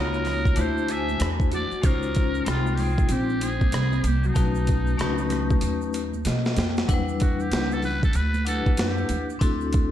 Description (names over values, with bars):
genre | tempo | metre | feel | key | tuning
hip hop, jazz-hop | 95 BPM | 4/4 | swing 62% on 16ths | unclear | A4 = 440 Hz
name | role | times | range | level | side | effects
trumpet with metal mute | melody | 0.0-9.4 s | D#4 to E5 | -32 LUFS | right 1 dB | diffuse ambient delay
mellow electric guitar | second line | 0.0-6.3 s | F#3 to G#4 | -31 LUFS | equal | analog chorus, diffuse ambient delay
vibraphone with hard mallets | accompaniment | 0.0-9.9 s | F#3 to G5 | -28 LUFS | left 5 dB | none
upright bass | bass | 0.0-9.9 s | A#1 to B2 | -27 LUFS | equal | none
maracas and congas | percussion | 0.1-9.9 s | none | -39 LUFS | right 10 dB | none
boom bap sampler-style drum kit | drums | 0.2-9.9 s | hi-hat, kick drum, rim click, snare drum | -25 LUFS | equal | none
room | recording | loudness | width
light reverb, small room reverb | none | -21 LUFS | side -11 dB against mid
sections
0.0-6.9 A section; 6.9-9.9 B section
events
vibraphone fill 5.9-6.9; drum fill 6.3-6.9; muted trumpet solo 6.9-9.9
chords
0.0 D#m7; 0.6 D9; 1.8 C#maj7; 4.4 B7; 6.9 Em7; 9.4 D7